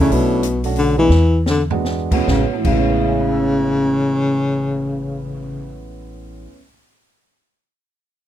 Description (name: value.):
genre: jazz, small-group swing and bop.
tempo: 133-190 BPM.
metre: 3/4.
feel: swing 63% on 8ths.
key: A major.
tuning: A4 = 440 Hz.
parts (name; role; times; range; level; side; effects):
breathy baritone saxophone; melody; 0.0-5.8 s; B2 to E3; -18 LUFS; left 2 dB; none.
warm concert grand piano; accompaniment; 0.0-6.7 s; A2 to E6; -23 LUFS; right 4 dB; none.
upright bass; bass; 0.0-6.5 s; A1 to E2; -22 LUFS; equal; none.
open jazz drum kit; drums; 0.1-2.8 s; crash cymbal, hi-hat, kick drum, snare drum, toms; -23 LUFS; equal; none.
room: light reverb.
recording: close, detailed microphones.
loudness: -15 LUFS.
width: side -11 dB against mid.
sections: 0.0-2.3 A section; 2.3-5.0 B section.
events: slowing down 0.1-2.3; drum fill 1.1-1.8.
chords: 0.1 Bm7; 1.1 E7; 2.3 Amaj9.